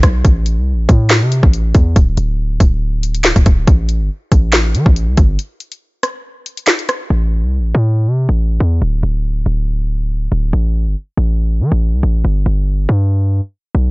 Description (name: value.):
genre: hip hop, drill.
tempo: 140 BPM.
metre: 4/4.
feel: half-time.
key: A minor.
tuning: A4 = 440 Hz.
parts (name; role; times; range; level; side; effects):
hard-hitting 808-style bass; bass; 0.0-13.9 s; D1 to E3; -14 LUFS; equal; none.
drill drum kit; drums; 0.0-7.0 s; handclaps, hi-hat, kick drum, rim click, snare drum; -11 LUFS; equal; none.
room: little or no reverb.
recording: nothing above 7.7 kHz.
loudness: -12 LUFS.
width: side -24 dB against mid.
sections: 0.0-7.1 A section; 7.1-13.9 B section.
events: break 5.4-7.1.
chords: none.